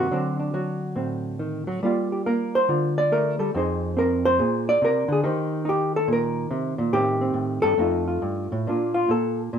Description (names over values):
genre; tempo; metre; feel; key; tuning
solo jazz; 140 BPM; 4/4; swing 65% on 8ths, rubato; G minor; A4 = 440 Hz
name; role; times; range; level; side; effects
hollow-body jazz guitar; solo; 0.0-9.6 s; F2 to D5; -21 LUFS; equal; none
room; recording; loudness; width
moderate studio reverb, RT60 0.5 s; minimal, uncompressed stereo recording; -21 LUFS; side -8 dB against mid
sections
0.0-8.7 A section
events
none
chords
0.1 D7; 1.8 Gm7; 3.5 Fm7; 4.4 Bb7; 5.2 Eb6; 6.9 Am7b5; 7.8 F7; 8.7 Bb